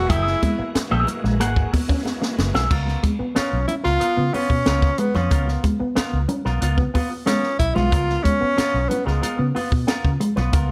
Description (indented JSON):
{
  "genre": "funk",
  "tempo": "92 BPM",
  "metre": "4/4",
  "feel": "straight",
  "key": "Db mixolydian",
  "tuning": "A4 = 441 Hz",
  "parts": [
    { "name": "clear tenor saxophone", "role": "melody", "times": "0.0-9.4 s", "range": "Ab3 to Gb4", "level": "-25 LUFS", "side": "equal", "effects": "none" },
    { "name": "bright tonewheel organ", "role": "sustained chords", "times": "0.0-2.7 s", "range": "Fb3 to Gb4", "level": "-35 LUFS", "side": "equal", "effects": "overdrive, chorus vibrato, slow rotary speaker" },
    { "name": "vintage muted fingered electric bass", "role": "bass", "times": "0.0-10.7 s", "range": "Gb1 to Db3", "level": "-25 LUFS", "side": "equal", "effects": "none" },
    { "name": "electric guitar with an envelope filter", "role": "accompaniment", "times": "0.1-10.7 s", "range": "Cb4 to Gb5", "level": "-30 LUFS", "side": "equal", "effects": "none" },
    { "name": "mellow electric guitar", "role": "riff", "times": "0.1-10.7 s", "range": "Gb3 to Db4", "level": "-29 LUFS", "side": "equal", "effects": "none" },
    { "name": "compact cocktail drum kit", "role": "drums", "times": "0.1-10.7 s", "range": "crash cymbal, hi-hat, kick drum, snare drum", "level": "-25 LUFS", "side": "equal", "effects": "none" },
    { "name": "congas", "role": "percussion", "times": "0.1-10.7 s", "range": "none", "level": "-34 LUFS", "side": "equal", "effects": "none" }
  ],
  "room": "light reverb",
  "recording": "none",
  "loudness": "-21 LUFS",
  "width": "mono",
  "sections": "0.0-2.7 A section; 2.7-10.7 B section",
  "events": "drum fill 2.1-2.7; tenor saxophone solo 2.7-10.7",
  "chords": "0.0 Gb9; 2.7 Db6"
}